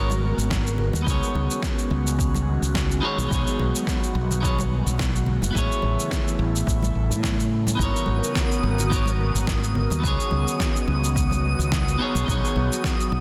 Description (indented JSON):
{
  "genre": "sunset chillout",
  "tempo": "107 BPM",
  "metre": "4/4",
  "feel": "swing 55% on 16ths",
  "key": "unclear",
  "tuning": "A4 = 440 Hz",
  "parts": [
    { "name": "clean electric guitar", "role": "accompaniment", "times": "0.0-13.2 s", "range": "B3 to C#5", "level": "-31 LUFS", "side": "equal", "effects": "digital delay" },
    { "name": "airy breathy pad", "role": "sustained chords", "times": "0.0-13.2 s", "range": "C#3 to A#4", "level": "-32 LUFS", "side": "equal", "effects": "chorus, phaser" },
    { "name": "mellow fretless electric bass", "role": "bass", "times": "0.0-13.2 s", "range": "F#1 to A2", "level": "-26 LUFS", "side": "equal", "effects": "none" },
    { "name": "electronic shaker and snare drum", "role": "drums", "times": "0.1-13.1 s", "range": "none", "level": "-32 LUFS", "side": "equal", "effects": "none" },
    { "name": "congas", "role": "percussion", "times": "0.1-13.2 s", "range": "none", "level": "-36 LUFS", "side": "equal", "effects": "none" },
    { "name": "electronic kick drum", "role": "drums", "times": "0.5-13.0 s", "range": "none", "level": "-29 LUFS", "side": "equal", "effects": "overdrive" },
    { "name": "twinkling granular texture", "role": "texture", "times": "8.2-13.2 s", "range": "D#6", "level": "-35 LUFS", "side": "equal", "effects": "built-in reverb" }
  ],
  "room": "moderate concert hall reverb, RT60 2.1 s",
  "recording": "dense, heavily limited modern master",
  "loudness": "-23 LUFS",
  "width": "mono",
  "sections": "0.0-13.2 A section",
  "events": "none",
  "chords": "0.0 G#m11; 1.1 C#9sus4; 3.0 B6; 5.6 Amaj7; 7.8 G#m11; 10.0 C#9sus4; 12.0 B6"
}